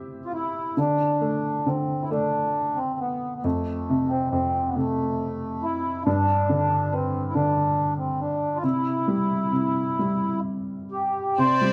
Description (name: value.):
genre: celtic folk, Celtic slow air.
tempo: 43-47 BPM (dotted quarters).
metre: 6/8.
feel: rubato.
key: D dorian.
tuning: A4 = 441 Hz.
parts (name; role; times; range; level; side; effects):
felt-muted upright piano; accompaniment; 0.0-11.7 s; F2 to B4; -28 LUFS; equal; none.
mellow accordion; melody; 0.3-11.7 s; A3 to C5; -27 LUFS; equal; none.
rich chamber string section; sustained chords; 11.4-11.7 s; C4 to E5; -33 LUFS; equal; none.
room: moderate recital hall reverb, RT60 1.6 s.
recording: close, detailed microphones.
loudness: -25 LUFS.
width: mono.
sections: 0.8-11.4 A section.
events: none.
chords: 0.0 C; 0.8 D5; 3.4 F; 6.1 G; 8.6 C.